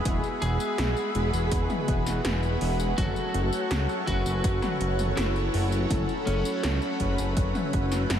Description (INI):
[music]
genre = synthwave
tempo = 82 BPM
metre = 4/4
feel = straight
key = F# minor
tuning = A4 = 440 Hz
[part]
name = lightly driven lead guitar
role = melody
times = 0.0-8.2 s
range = C#4 to G#4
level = -33 LUFS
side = left 1 dB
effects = analog delay
[part]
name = phased analog pad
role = sustained chords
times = 0.0-8.2 s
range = G#4 to C#6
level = -33 LUFS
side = right 2 dB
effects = phaser, chorus, sidechain pumping
[part]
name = analog synth brass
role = stabs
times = 0.1-8.2 s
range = F#3 to B4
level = -32 LUFS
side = left 2 dB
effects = chorus, ping-pong delay
[part]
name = fat analog bass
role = bass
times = 0.1-8.2 s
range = E1 to C#2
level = -28 LUFS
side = equal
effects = sidechain pumping
[part]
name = 80s electronic pad drums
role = drums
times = 0.1-8.2 s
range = hi-hat, snare drum, tambourine, toms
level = -33 LUFS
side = equal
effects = gated reverb on snare and toms, overdrive
[part]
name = electronic kick drum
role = drums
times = 0.1-7.9 s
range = none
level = -30 LUFS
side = equal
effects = overdrive
[sound]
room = moderate huge ambient reverb, RT60 9.2 s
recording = dreamy mix soaked in reverb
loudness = -24 LUFS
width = side -9 dB against mid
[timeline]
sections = 0.0-8.2 A section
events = none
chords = 0.0 Eadd9; 3.0 F#m